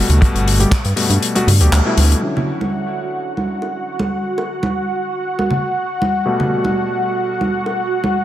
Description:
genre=nu-disco, nu disco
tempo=119 BPM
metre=4/4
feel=straight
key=D major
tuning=A4 = 439 Hz
part: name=warm electric grand piano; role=accompaniment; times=0.0-8.2 s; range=B2 to G4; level=-22 LUFS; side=left 2 dB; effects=sidechain pumping, low-pass filter, digital delay
part: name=chorused synth bass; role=bass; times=0.0-2.1 s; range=G1 to G2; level=-13 LUFS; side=equal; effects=sidechain pumping
part: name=damped 70s drum kit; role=drums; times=0.1-2.2 s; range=handclaps, hi-hat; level=-20 LUFS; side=left 3 dB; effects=low-pass filter on hats, low-pass filter on snare, low-pass filter on room
part: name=congas and bongos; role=percussion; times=0.1-8.1 s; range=none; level=-22 LUFS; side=right 2 dB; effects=none
part: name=kick drum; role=drums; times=0.2-0.8 s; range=none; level=-13 LUFS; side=equal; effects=none
part: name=lush unison pad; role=sustained chords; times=2.2-8.2 s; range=F#4 to F#5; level=-20 LUFS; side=right 1 dB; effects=chorus, phaser, sidechain pumping
room=moderate plate reverb, RT60 2.1 s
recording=dense, heavily limited modern master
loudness=-15 LUFS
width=side -12 dB against mid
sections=0.0-2.2 A section; 2.2-8.2 B section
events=kick drops out 1.2-2.2; band accent 1.7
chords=0.0 Gmaj9; 2.2 Dmaj9; 6.3 Gmaj9

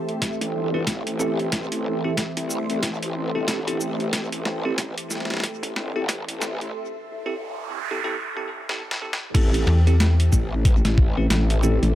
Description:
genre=glitch hop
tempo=92 BPM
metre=4/4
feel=swing 60% on 16ths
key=A minor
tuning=A4 = 440 Hz
part: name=warm analog pad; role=sustained chords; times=0.0-11.9 s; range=E3 to G4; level=-30 LUFS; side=equal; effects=chorus, sidechain pumping
part: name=ethereal airy pad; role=texture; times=0.0-11.9 s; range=A4 to C6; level=-34 LUFS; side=right 1 dB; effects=ensemble chorus, built-in reverb, phaser, sidechain pumping
part: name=boom bap sampler-style drum kit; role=drums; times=0.1-11.9 s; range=crash cymbal, hi-hat, rim click, shaker, snare drum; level=-27 LUFS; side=equal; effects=overdrive, high-pass filter on snare, high-pass filter on hats, high-pass filter on perc, high-pass filter on cymbals, high-pass filter on room
part: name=electronic kick drum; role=drums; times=0.2-11.1 s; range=none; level=-20 LUFS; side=equal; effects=overdrive, high-pass filter on kick, high-pass filter on room
part: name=growl bass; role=bass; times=0.4-11.9 s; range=G1 to C2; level=-25 LUFS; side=equal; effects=chorus, high-pass filter
part: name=bell-like tine electric piano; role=stabs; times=0.7-11.8 s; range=C4 to B4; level=-29 LUFS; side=right 1 dB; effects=medium stereo tremolo, sidechain pumping, tape echo
part: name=noise sweep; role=sound effects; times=7.1-9.3 s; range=none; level=-32 LUFS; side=right 7 dB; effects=none
part: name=slap-like FM bass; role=bass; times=9.7-10.3 s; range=E2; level=-16 LUFS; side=equal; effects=none
room=little or no reverb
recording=echo-heavy mix, high-pass filter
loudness=-21 LUFS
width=side -14 dB against mid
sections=0.0-9.3 A section; 9.3-11.9 B section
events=build-up 0.0-9.3; drum fill 0.0-6.7, 8.7-9.3; filter sweep 0.0-9.3; break 6.7-9.3; noise sweep 7.1-9.3; drop 9.3-11.9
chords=0.0 Am7

